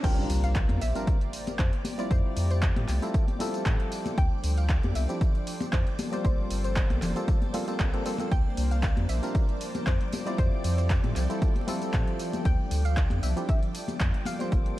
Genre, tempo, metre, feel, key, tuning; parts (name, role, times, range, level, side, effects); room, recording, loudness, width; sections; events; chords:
deep house; 116 BPM; 4/4; swing 54% on 16ths; A4 = 439 Hz
soft round pluck; melody; 0.0-14.8 s; C5 to G5; -39 LUFS; equal; chorus, dub echo
warm analog pad; sustained chords; 0.0-14.8 s; F3 to G5; -39 LUFS; right 1 dB; chorus, tremolo, sidechain pumping
percussive organ stab; stabs; 0.0-14.8 s; F3 to D5; -34 LUFS; left 1 dB; chorus, sidechain pumping
warm sub bass; bass; 0.0-14.6 s; F1 to A2; -27 LUFS; equal; tube saturation, sidechain pumping
electronic kick drum; drums; 0.0-14.6 s; -26 LUFS; equal; overdrive
punchy analog drum machine; drums; 0.0-14.8 s; crash cymbal, handclaps, hi-hat, ride cymbal, tambourine; -37 LUFS; equal; overdrive
riser and impact; sound effects; 0.0-2.1 s; -36 LUFS; equal
string machine, violins; texture; 0.0-14.8 s; D5 to D6; -46 LUFS; equal; ensemble chorus
granular cloud pad; texture; 0.3-14.8 s; F3 to Bb5; -40 LUFS; right 1 dB; built-in reverb, sidechain pumping
congas; percussion; 0.7-14.4 s; -36 LUFS; left 3 dB; sidechain pumping on perc
little or no reverb; dark, warm production, vinyl crackle; -24 LUFS; side -16 dB against mid
0.0-14.8 A section
drop 0.0-14.8; impact 0.0-2.1
0.0 C9sus4; 2.1 Dm11; 6.0 Gm11; 8.3 C9sus4; 10.4 Dm11; 14.3 Gm11